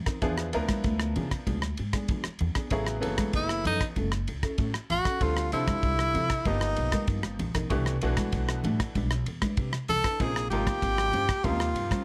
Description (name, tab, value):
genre	electric jazz fusion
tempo	96 BPM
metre	4/4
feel	straight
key	unclear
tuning	A4 = 440 Hz
part	upright bass	bass	0.0-11.9 s	F#1 to E3	-33 LUFS	equal	none
part	mellow electric guitar	stabs	0.1-12.0 s	F3 to C5	-41 LUFS	equal	subtle chorus
part	damped 70s drum kit	drums	0.1-12.0 s	kick drum, ride cymbal, rim click	-34 LUFS	equal	none
part	bright grand piano	accompaniment	0.2-12.0 s	B2 to Bb4	-36 LUFS	equal	none
part	congas	percussion	0.7-12.0 s	none	-38 LUFS	equal	none
part	clear tenor saxophone	melody	3.4-12.0 s	D#4 to A4	-30 LUFS	equal	none
room	light reverb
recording	none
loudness	-28 LUFS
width	mono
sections	0.0-12.0 A section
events	tenor saxophone solo 0.0-12.0; drum fill 7.2-7.7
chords	0.2 E7b9; 2.7 A6; 5.2 Dm9; 6.5 G7alt; 7.7 Cmaj9; 10.2 Bbm9; 11.4 Eb13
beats	| 0.23 0.85 1.48 2.10 | 2.72 3.35 3.97 4.59 | 5.22 5.84 6.46 7.09 | 7.71 8.33 8.96 9.58 | 10.20 10.82 11.45